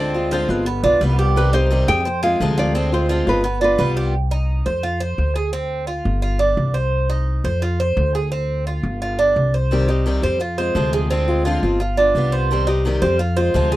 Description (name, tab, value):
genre	latin, Cuban son and guajira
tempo	172 BPM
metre	4/4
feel	straight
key	C harmonic minor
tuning	A4 = 440 Hz
part	nylon-string guitar	melody	0.0-4.0 s	B4 to G5	-22 LUFS	equal	slapback echo
part	picked steel-string acoustic guitar	accompaniment	0.0-4.1, 9.7-13.8 s	C3 to G4	-22 LUFS	left 2 dB	none
part	Cuban tres	arpeggios	0.0-13.8 s	B3 to C5	-21 LUFS	right 2 dB	none
part	upright bass	bass	0.0-13.8 s	G1 to F2	-20 LUFS	equal	none
room	little or no reverb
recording	dry, close 1970s-style studio recording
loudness	-16 LUFS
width	side -16 dB against mid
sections	0.0-4.1 A section; 4.1-13.8 B section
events	none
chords	0.0 Dm7b5; 0.7 G7; 1.4 Cm; 2.1 Fm; 2.7 Dm7b5; 3.4 G7; 4.1 Cm; 4.8 Fm; 5.5 G7sus4; 6.9 Cm; 7.6 Fm; 8.3 G7sus4; 9.7 Cm; 10.4 Fm; 11.1 Dm7b5; 11.8 G7; 12.5 Cm; 13.2 Fm